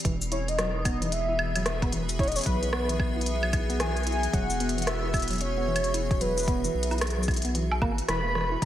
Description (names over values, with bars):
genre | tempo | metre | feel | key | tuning
IDM | 112 BPM | 4/4 | swing 62% on 16ths | E major | A4 = 438 Hz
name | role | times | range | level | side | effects
icy glass pad | sustained chords | 0.0-8.7 s | E3 to E5 | -34 LUFS | left 1 dB | chorus, built-in reverb
tine electric piano | arpeggios | 0.0-8.6 s | E3 to E4 | -34 LUFS | right 2 dB | analog delay
round analog bass | bass | 0.0-8.7 s | E1 to B1 | -31 LUFS | equal | none
electronic kick drum | drums | 0.0-8.7 s | none | -29 LUFS | equal | none
organic electronic drum kit | drums | 0.0-8.7 s | hi-hat, rim click, shaker, woodblock | -31 LUFS | equal | none
warm velvety synth lead | melody | 0.3-8.7 s | B4 to B5 | -31 LUFS | equal | chorus, analog delay
room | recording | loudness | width
light reverb, digital ambience | echo-heavy mix | -24 LUFS | side -12 dB against mid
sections
0.0-8.7 A section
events
none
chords
0.0 Emaj9